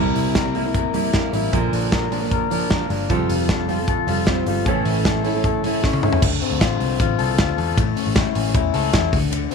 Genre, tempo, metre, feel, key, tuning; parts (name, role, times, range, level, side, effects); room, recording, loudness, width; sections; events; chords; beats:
jangly indie pop; 154 BPM; 4/4; straight; D minor; A4 = 436 Hz
fingerpicked steel-string acoustic guitar; accompaniment; 0.0-6.2 s; A2 to Bb4; -23 LUFS; right 13 dB
electric guitar through a small old amp; arpeggios; 0.0-9.5 s; A2 to Bb4; -23 LUFS; left 16 dB
vintage muted picked electric bass; bass; 0.0-9.5 s; F1 to E2; -26 LUFS; equal
modern studio drum kit; drums; 0.2-9.5 s; crash cymbal, hi-hat, kick drum, ride cymbal, snare drum, toms; -22 LUFS; equal
studio ambience; 1960s-style stereo with parts hard left and right; -17 LUFS; side -5 dB against mid
0.0-6.2 A section; 6.2-9.5 B section
drum fill 5.8-6.2
0.0 C7; 1.5 Bb; 3.1 Fadd9; 4.7 A; 6.2 Dm7; 7.8 A
0.35 0.75 1.14 | 1.53 1.92 2.32 2.71 | 3.10 3.49 3.88 4.27 | 4.66 5.05 5.44 5.83 | 6.22 6.61 7.00 7.39 | 7.78 8.16 8.55 8.94 | 9.32